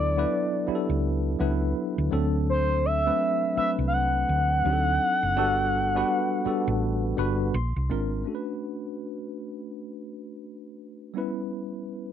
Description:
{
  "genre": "R&B, neo-soul",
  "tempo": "83 BPM",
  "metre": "4/4",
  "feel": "swing 60% on 16ths",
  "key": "B minor",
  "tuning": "A4 = 440 Hz",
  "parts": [
    { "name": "expressive portamento lead", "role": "melody", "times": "0.0-7.5 s", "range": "C5 to F#5", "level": "-26 LUFS", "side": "equal", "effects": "chorus" },
    { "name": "tine electric piano", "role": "accompaniment", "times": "0.0-12.1 s", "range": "F#3 to B#5", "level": "-28 LUFS", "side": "left 1 dB", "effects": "medium stereo tremolo" },
    { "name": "hollow-body short-scale fingered electric bass", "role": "bass", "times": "0.0-8.2 s", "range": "F#1 to D2", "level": "-27 LUFS", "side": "equal", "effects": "none" }
  ],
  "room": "light reverb",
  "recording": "none",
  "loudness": "-23 LUFS",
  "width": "side -9 dB against mid",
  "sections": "0.0-8.3 A section; 8.3-12.1 B section",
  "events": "tine electric piano fill 7.2-8.3",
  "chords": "0.0 D69; 2.1 D7; 4.6 D7b9; 5.4 Gmaj9; 7.5 A#9; 8.3 Bm9; 11.1 C#m7b5",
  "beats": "0.30 1.02 1.75 | 2.47 3.19 3.92 4.64 | 5.36 6.08 6.81 7.53 | 8.25 8.98 9.70 10.42 | 11.15 11.87"
}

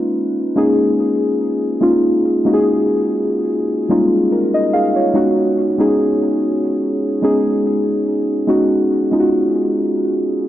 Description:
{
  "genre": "R&B",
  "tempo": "72 BPM",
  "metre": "4/4",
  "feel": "swing 54% on 16ths",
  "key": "Eb minor",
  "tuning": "A4 = 440 Hz",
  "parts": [
    { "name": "muted felt-like synth keys", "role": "solo", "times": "0.0-10.5 s", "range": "G3 to F5", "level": "-14 LUFS", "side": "equal", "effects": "chorus, ping-pong delay" }
  ],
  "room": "light reverb, digital ambience",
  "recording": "none",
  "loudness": "-14 LUFS",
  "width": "side -13 dB against mid",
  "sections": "0.0-10.5 A section",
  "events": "none",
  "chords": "0.0 Eb9sus4; 5.2 Db9sus4",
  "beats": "0.15 0.98 | 1.82 2.65 3.48 4.32 | 5.15 5.98 6.82 7.65 | 8.48 9.32 10.15"
}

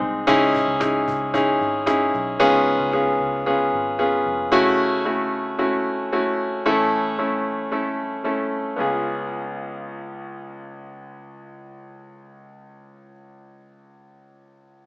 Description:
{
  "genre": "piano-driven pop",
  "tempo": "113 BPM",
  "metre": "4/4",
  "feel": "straight",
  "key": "unclear",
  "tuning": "A4 = 436 Hz",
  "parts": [
    { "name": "bright concert grand piano", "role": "accompaniment", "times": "0.0-14.9 s", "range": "C#2 to A4", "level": "-19 LUFS", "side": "equal", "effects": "none" },
    { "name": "vintage muted picked electric bass", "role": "bass", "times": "0.0-4.5 s", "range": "E#1 to C#2", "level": "-37 LUFS", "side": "equal", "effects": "none" },
    { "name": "cajon", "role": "drums", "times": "0.3-2.2 s", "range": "none", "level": "-33 LUFS", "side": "equal", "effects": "none" }
  ],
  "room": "moderate large studio reverb, RT60 0.9 s",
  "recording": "band playing live in one room, small speaker sound",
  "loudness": "-18 LUFS",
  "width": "side -23 dB against mid",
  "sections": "0.3-8.8 A section; 8.8-13.0 B section",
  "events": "none",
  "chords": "0.3 C#madd9; 2.4 C#7; 4.5 F#m7; 6.7 A; 8.8 C#7",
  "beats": "| 0.28 0.81 1.34 1.87 | 2.40 2.94 3.47 4.00 | 4.53 5.06 5.59 6.12 | 6.66 7.19 7.72 8.25 | 8.79 9.32 9.85 10.38 | 10.91 11.45 11.98 12.51"
}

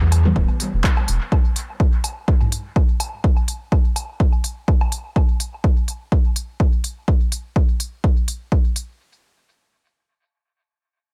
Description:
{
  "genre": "dub techno",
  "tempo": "125 BPM",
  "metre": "4/4",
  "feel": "swing 55% on 16ths",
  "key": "E minor",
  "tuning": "A4 = 438 Hz",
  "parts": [
    { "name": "soft dub sub bass", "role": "bass", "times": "0.0-1.2 s", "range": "D1 to E2", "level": "-19 LUFS", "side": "equal", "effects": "sidechain pumping" },
    { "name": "deep house drum kit", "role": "drums", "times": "0.1-8.9 s", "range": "handclaps, hi-hat", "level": "-29 LUFS", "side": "equal", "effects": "dub echo" },
    { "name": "electronic woodblock and toms", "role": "percussion", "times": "0.1-4.9 s", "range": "none", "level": "-34 LUFS", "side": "equal", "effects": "sidechain pumping on perc, sidechain pumping on toms, dub echo" },
    { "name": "deep mellow chord stab", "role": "stabs", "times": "0.3-0.5 s", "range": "E3 to B3", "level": "-28 LUFS", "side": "equal", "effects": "chorus, phaser, cassette tape, sidechain pumping, dub echo" },
    { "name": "electronic kick drum", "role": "drums", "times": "0.4-8.6 s", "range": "none", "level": "-19 LUFS", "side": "equal", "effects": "none" }
  ],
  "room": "little or no reverb",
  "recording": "echo-heavy mix",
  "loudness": "-20 LUFS",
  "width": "mono",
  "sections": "0.0-9.0 A section",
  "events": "filter sweep on synth stab 0.0-1.3",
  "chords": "0.0 Em",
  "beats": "0.36 0.84 | 1.32 1.80 2.28 2.76 | 3.24 3.72 4.20 4.68 | 5.16 5.64 6.12 6.60 | 7.08 7.56 8.04 8.52"
}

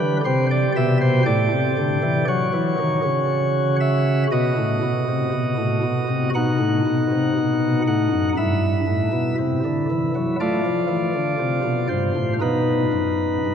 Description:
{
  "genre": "classical, chorale-style piece for pipe organ",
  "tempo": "59 BPM",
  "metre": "4/4",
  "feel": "rubato",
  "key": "unclear",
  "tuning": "A4 = 439 Hz",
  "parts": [
    { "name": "chamber organ, sparkling flutes", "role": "solo", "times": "0.0-13.5 s", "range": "F#2 to F#5", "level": "-18 LUFS", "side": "equal", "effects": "none" }
  ],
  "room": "wet cathedral reverb, RT60 4.6 s",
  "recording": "dark, warm production",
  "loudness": "-18 LUFS",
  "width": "side -8 dB against mid",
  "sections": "0.0-13.5 A section",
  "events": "none",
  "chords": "0.2 Am7; 2.3 F#5; 4.3 B; 6.3 B7; 8.4 Em/G; 10.4 F; 12.4 B",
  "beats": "0.24 1.26 | 2.28 3.30 4.31 5.33 | 6.33 7.35 8.35 9.38 | 10.39 11.39 12.42 13.46"
}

